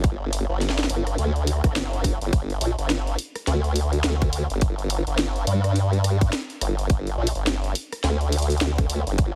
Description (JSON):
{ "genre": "glitch hop", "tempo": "105 BPM", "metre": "4/4", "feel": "swing 60% on 16ths", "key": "G minor pentatonic", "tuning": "A4 = 439 Hz", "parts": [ { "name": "formant-sweep wobble bass", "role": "bass", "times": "0.0-9.4 s", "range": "G1 to G2", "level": "-25 LUFS", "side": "equal", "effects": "chorus, tube saturation" }, { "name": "drum and bass drum kit", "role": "drums", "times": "0.0-9.3 s", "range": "hi-hat, rim click, snare drum", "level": "-30 LUFS", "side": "equal", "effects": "none" }, { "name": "electronic kick drum", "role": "drums", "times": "0.0-9.3 s", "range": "none", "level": "-23 LUFS", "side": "equal", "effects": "none" } ], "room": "digital ambience", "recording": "heavily compressed radio sound, multiband compression", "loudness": "-24 LUFS", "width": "mono", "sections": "0.0-9.4 A section", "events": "none", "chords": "none" }